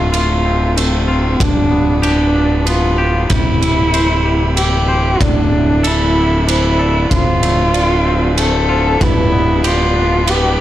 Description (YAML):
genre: post-rock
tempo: 95 BPM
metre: 3/4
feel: straight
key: D minor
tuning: A4 = 440 Hz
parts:
  - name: muted cello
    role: melody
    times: 0.0-10.6 s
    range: C4 to A4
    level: -16 LUFS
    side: equal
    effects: tape echo
  - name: lush unison pad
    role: sustained chords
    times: 0.0-10.6 s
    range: C3 to F4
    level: -26 LUFS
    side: equal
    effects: none
  - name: twangy electric guitar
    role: arpeggios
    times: 0.0-10.6 s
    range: D2 to C5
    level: -22 LUFS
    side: left 2 dB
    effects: tape echo
  - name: fuzz fingered electric bass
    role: bass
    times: 0.0-10.6 s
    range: D1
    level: -16 LUFS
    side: equal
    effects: overdrive
  - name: big rock drum kit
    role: drums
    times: 0.1-10.4 s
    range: kick drum, ride cymbal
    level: -19 LUFS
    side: right 1 dB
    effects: none
  - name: vibraphone with soft mallets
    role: arpeggios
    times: 5.2-10.6 s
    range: B4 to E5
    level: -26 LUFS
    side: right 2 dB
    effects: tape echo
room: light reverb, studio reverb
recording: dark, warm production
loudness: -12 LUFS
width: side -13 dB against mid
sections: 0.0-10.6 A section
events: none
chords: 0.0 Dm7; 1.4 G7/D; 3.3 C7/D; 5.2 A7sus4/D; 7.1 Dm7; 9.0 G7/D